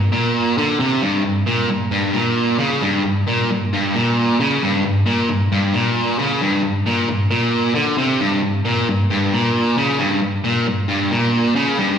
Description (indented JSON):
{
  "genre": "rock",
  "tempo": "134 BPM",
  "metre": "4/4",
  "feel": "straight",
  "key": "unclear",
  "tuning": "A4 = 443 Hz",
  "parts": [
    { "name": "distorted electric guitar", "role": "solo", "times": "0.0-12.0 s", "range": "G2 to D3", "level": "-16 LUFS", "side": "equal", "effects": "distortion, slapback echo" }
  ],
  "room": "moderate club reverb, RT60 0.9 s",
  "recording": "live gig heard through the venue's PA, recital hall reverb",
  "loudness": "-16 LUFS",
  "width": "side -8 dB against mid",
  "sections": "0.0-1.0 A section; 1.0-12.0 A section",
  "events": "none",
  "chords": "none"
}